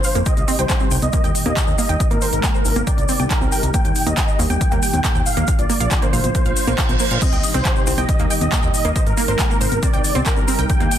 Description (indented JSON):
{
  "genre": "uplifting trance",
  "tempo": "138 BPM",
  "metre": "4/4",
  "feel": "straight",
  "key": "C minor",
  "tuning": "A4 = 440 Hz",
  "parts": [
    { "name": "supersaw chords", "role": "melody", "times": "0.0-11.0 s", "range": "Bb4 to G5", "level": "-24 LUFS", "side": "right 1 dB", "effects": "ensemble chorus, sidechain pumping, low-pass filter, dub echo" },
    { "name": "lush unison pad", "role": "sustained chords", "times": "0.0-11.0 s", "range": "Bb2 to G4", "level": "-28 LUFS", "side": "left 1 dB", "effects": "chorus, sidechain pumping" },
    { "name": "wide unison pluck", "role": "arpeggios", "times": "0.0-11.0 s", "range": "Bb3 to G5", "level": "-26 LUFS", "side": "right 4 dB", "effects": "sidechain pumping, dub echo" },
    { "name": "big-room dance drum kit", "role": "drums", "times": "0.0-11.0 s", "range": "congas, crash cymbal, handclaps, hi-hat", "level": "-24 LUFS", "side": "equal", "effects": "sidechain pumping on hats, sidechain pumping on perc, sidechain pumping on cymbals" },
    { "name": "tube shaker", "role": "percussion", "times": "0.0-11.0 s", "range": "none", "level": "-29 LUFS", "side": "left 7 dB", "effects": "none" },
    { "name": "fat analog bass", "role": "bass", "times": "0.2-10.9 s", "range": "Ab1 to Bb2", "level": "-22 LUFS", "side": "equal", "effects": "sidechain pumping" },
    { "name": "electronic kick drum", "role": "drums", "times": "0.3-10.8 s", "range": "none", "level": "-19 LUFS", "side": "equal", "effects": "none" },
    { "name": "reverse cymbal", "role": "sound effects", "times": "6.5-7.2 s", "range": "none", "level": "-27 LUFS", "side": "right 6 dB", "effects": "none" }
  ],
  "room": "light reverb",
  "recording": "dense, heavily limited modern master",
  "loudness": "-15 LUFS",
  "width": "side -10 dB against mid",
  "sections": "0.0-11.0 A section",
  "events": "filter sweep on analog synth pad 0.0-11.0; reverse cymbal 6.5-7.2",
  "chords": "0.3 Cm; 1.1 Eb; 2.0 Abadd9; 2.9 Cm; 3.7 Eb; 5.5 Bb; 7.2 Cm; 8.1 Eb; 9.0 Abadd9; 9.8 Cm"
}